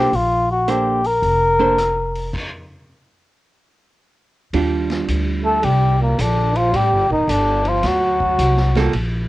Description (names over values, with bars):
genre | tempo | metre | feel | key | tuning
jazz, small-group swing and bop | 109 BPM | 4/4 | swing 67% on 8ths | unclear | A4 = 438 Hz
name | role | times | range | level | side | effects
trumpet with cup mute | melody | 0.0-9.0 s | Bb3 to Bb4 | -17 LUFS | left 2 dB | cassette tape
archtop guitar, miked and amplified | accompaniment | 0.0-8.9 s | G3 to C5 | -21 LUFS | right 6 dB | none
upright bass | bass | 0.0-9.3 s | Eb1 to Eb2 | -20 LUFS | equal | none
vintage drum kit | drums | 0.1-9.1 s | crash cymbal, hi-hat, kick drum, ride cymbal, rim click, snare drum | -30 LUFS | equal | cassette tape
bright trombone | second line | 5.4-8.9 s | Bb2 to A3 | -24 LUFS | right 6 dB | none
room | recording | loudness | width
light reverb | home recording on cassette | -15 LUFS | side -17 dB against mid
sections
0.0-4.5 A section; 4.5-9.3 B section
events
stop 2.3-4.5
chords
0.1 Bbmaj9; 3.4 N.C.; 4.5 Ebmaj9; 6.7 Ebmaj9#11; 7.8 D7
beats
| 0.12 0.67 1.22 1.78 | 2.33 2.88 3.43 3.98 | 4.53 5.08 5.63 6.19 | 6.74 7.29 7.84 8.39 | 8.94